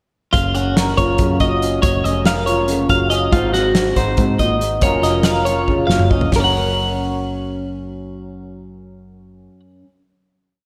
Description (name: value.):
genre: math rock and midwest emo.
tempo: 281 BPM (eighths).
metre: 7/8.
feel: straight.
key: Gb lydian.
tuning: A4 = 440 Hz.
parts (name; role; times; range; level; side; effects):
electric guitar through a small old amp; accompaniment; 0.3-9.9 s; Gb2 to Bb4; -24 LUFS; equal; analog chorus.
twelve-string electric guitar; arpeggios; 0.3-9.6 s; F4 to Gb5; -22 LUFS; equal; slapback echo.
picked electric bass; bass; 0.3-9.5 s; F1 to Ab2; -24 LUFS; equal; none.
loose indie drum kit; drums; 0.3-6.4 s; hi-hat, kick drum, snare drum, toms; -22 LUFS; equal; none.
room: moderate lush hall reverb, RT60 1.9 s, small room ambience.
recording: big arena sound.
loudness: -17 LUFS.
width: mono.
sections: 0.3-6.3 A section; 6.3-9.3 final chord.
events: drum fill 5.7-6.3.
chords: 0.3 Gbmaj7; 3.3 Ab7; 4.8 Gbmaj7; 6.3 Gb.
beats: | 0.33 0.54 0.76 0.97 1.19 1.40 1.61 | 1.83 2.04 2.25 2.47 2.68 2.90 3.11 | 3.32 3.54 3.75 3.96 4.17 4.39 4.60 | 4.82 5.03 5.24 5.46 5.67 5.88 6.10 | 6.31 6.52 6.74 6.95 7.17 7.38 7.59 | 7.81 8.02 8.23 8.45 8.66 8.88 9.09.